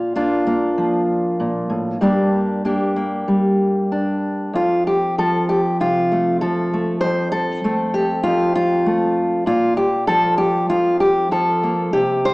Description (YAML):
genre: folk, solo fingerstyle acoustic guitar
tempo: 97 BPM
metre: 4/4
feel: rubato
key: F major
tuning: A4 = 440 Hz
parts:
  - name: fingerpicked steel-string acoustic guitar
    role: solo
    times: 0.0-12.3 s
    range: F2 to C5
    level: -16 LUFS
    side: equal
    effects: none
room: wet recital hall reverb, RT60 1.5 s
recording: recorded in a church or concert hall, small speaker sound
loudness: -16 LUFS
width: side -24 dB against mid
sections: 0.0-4.6 A section; 4.6-12.3 B section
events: none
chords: 0.0 Bb; 2.0 Gm; 4.6 F; 9.5 Bb5